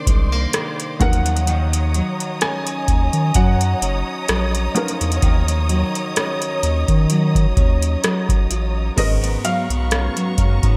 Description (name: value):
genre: contemporary R&B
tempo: 64 BPM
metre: 4/4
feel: swing 54% on 16ths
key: unclear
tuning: A4 = 440 Hz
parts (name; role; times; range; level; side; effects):
- felt-muted upright piano; accompaniment; 0.0-10.8 s; F3 to Bb4; -31 LUFS; equal; none
- warm studio string section; sustained chords; 0.0-10.8 s; Cb4 to Eb6; -30 LUFS; equal; none
- fingerpicked steel-string acoustic guitar; arpeggios; 0.0-10.8 s; Ab2 to F4; -27 LUFS; equal; subtle chorus
- saturated sub bass; bass; 0.1-10.8 s; Gb1 to Eb3; -22 LUFS; equal; none
- booming analog drum machine; drums; 0.1-10.8 s; crash cymbal, hi-hat, kick drum, rim click; -21 LUFS; equal; overdrive, gated reverb
- clear grand piano; melody; 1.0-10.3 s; Eb5 to Ab5; -28 LUFS; equal; analog chorus, digital delay
room: light reverb, studio ambience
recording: bright 1980s-style digital production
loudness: -19 LUFS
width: mono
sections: 0.0-9.0 A section; 9.0-10.8 B section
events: none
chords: 0.0 Cm9; 1.0 Ebm9; 9.0 Abm11